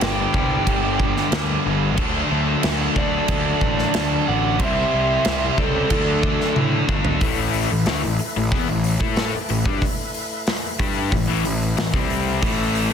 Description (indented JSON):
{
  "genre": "hard rock",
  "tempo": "92 BPM",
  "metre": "4/4",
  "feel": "straight",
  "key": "A dorian",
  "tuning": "A4 = 440 Hz",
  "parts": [
    { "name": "lead guitar through a small cranked amp", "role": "melody", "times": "0.0-6.5 s", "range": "A4 to G5", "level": "-25 LUFS", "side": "right 3 dB", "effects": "overdrive, slapback echo" },
    { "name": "octave-fuzz lead guitar", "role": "second line", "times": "0.0-6.5 s", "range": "D4 to D5", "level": "-30 LUFS", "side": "right 5 dB", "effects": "distortion" },
    { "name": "overdriven tonewheel organ", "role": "sustained chords", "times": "0.0-12.9 s", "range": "G3 to E5", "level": "-33 LUFS", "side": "equal", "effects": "none" },
    { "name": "biting overdriven guitar", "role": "riff", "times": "0.0-12.9 s", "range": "G2 to A4", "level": "-28 LUFS", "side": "equal", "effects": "spring reverb" },
    { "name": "cranked stack guitar", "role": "riff", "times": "0.0-12.9 s", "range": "G2 to A4", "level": "-25 LUFS", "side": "left 10 dB", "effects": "overdrive" },
    { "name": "scooped high-gain guitar", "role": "riff", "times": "0.0-7.2, 12.4-12.9 s", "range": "G2 to D4", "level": "-27 LUFS", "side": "right 11 dB", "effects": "distortion" },
    { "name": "fuzz picked electric bass", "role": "bass", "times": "0.0-12.9 s", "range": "G1 to A2", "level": "-25 LUFS", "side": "equal", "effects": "overdrive" },
    { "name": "big rock drum kit", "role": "drums", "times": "0.0-12.9 s", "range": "crash cymbal, hi-hat, kick drum, snare drum, toms", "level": "-23 LUFS", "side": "equal", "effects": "none" }
  ],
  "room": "light reverb, small room ambience",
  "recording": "dense, heavily limited modern master",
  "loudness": "-18 LUFS",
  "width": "side -7 dB against mid",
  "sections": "0.0-7.2 A section; 7.2-12.9 B section",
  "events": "drum fill 6.6-7.2",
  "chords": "0.0 G; 2.0 D; 4.6 C; 5.9 D; 7.2 Am"
}